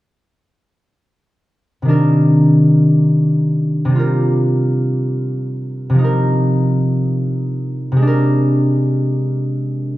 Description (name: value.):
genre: classical, solo harp piece.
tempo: 87 BPM.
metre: 3/4.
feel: uneven beats, rubato.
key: C minor.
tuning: A4 = 440 Hz.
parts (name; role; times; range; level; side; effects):
concert harp; solo; 1.8-10.0 s; C3 to Bb4; -13 LUFS; equal; none.
room: wet recital hall reverb, RT60 1.4 s.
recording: none.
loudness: -13 LUFS.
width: side -16 dB against mid.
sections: 1.9-10.0 A section.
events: none.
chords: 1.9 Cm9; 6.1 Cm11; 8.1 Bb9/C.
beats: | 1.94 2.68 3.38 | 4.06 4.72 5.41 | 6.09 6.78 7.45 | 8.13 8.83 9.56.